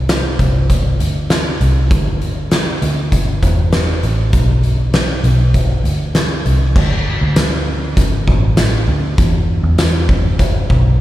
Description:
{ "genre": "dream pop", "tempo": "99 BPM", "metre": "4/4", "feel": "straight", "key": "unclear", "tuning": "A4 = 440 Hz", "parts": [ { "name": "vintage muted picked electric bass", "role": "bass", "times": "0.0-11.0 s", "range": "A1 to E2", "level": "-15 LUFS", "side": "equal", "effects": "none" }, { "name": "oversized low-tuned drum kit", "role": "drums", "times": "0.1-10.8 s", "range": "crash cymbal, hi-hat, kick drum, snare drum, tambourine", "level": "-15 LUFS", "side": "equal", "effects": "none" } ], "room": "light reverb", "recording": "played on a big sound system in a bare room, large studio reverb", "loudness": "-12 LUFS", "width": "side -15 dB against mid", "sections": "0.0-6.8 A section; 6.8-11.0 B section", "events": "none", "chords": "none" }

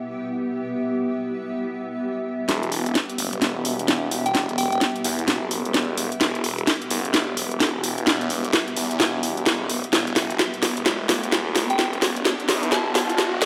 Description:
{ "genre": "bass house", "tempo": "129 BPM", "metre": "4/4", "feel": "swing 62% on 16ths", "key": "E minor", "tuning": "A4 = 436 Hz", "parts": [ { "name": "granular cloud pad", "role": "texture", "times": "0.0-13.5 s", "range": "B3 to E5", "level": "-31 LUFS", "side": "equal", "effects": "built-in reverb" }, { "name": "phased detuned saw bass", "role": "bass", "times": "2.5-13.5 s", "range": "E1 to E2", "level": "-30 LUFS", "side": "equal", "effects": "phaser, high-pass filter" }, { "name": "house drum kit", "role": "drums", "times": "2.5-13.5 s", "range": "hi-hat, snare drum", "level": "-24 LUFS", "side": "equal", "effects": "overdrive, studio reverb" }, { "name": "soft synth bell", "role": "melody", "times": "4.3-4.8, 11.7-13.2 s", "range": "G5 to A5", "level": "-29 LUFS", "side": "equal", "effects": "chorus, delay" }, { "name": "riser", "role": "sound effects", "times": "10.5-13.5 s", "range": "none", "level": "-33 LUFS", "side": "equal", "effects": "none" } ], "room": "wet lush hall reverb, RT60 1.6 s", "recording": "dreamy mix soaked in reverb, high-pass filter", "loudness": "-23 LUFS", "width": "mono", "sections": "0.0-2.5 A section; 2.5-13.5 B section", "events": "build-up 2.5-13.5; drum fill 2.5-13.5; riser 10.9-13.5", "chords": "0.0 Em" }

